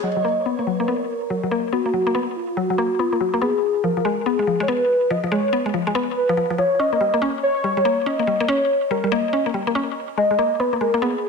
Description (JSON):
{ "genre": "IDM", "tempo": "142 BPM", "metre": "4/4", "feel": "swing 62% on 16ths", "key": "unclear", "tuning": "A4 = 440 Hz", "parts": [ { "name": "warm velvety synth lead", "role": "melody", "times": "0.0-11.3 s", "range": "E#4 to D#5", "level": "-21 LUFS", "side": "equal", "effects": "chorus, dub echo" }, { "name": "mallet-like synth pluck", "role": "arpeggios", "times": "0.0-11.1 s", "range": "E#3 to C#4", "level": "-22 LUFS", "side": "left 2 dB", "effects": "chorus, phaser, ping-pong delay" } ], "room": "moderate digital room reverb, RT60 1.1 s", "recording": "dense, heavily limited modern master", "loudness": "-18 LUFS", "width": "side -4 dB against mid", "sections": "0.0-11.3 A section", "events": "filter sweep on synth arpeggio sound 0.0-11.3", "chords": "0.0 Bmaj7; 3.4 C#7; 6.8 D#7; 10.2 G#madd9", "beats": "| 0.04 0.46 0.88 1.30 | 1.73 2.15 2.57 2.99 | 3.42 3.84 4.26 4.68 | 5.11 5.53 5.95 6.37 | 6.80 7.22 7.64 8.06 | 8.49 8.91 9.33 9.75 | 10.18 10.60 11.02" }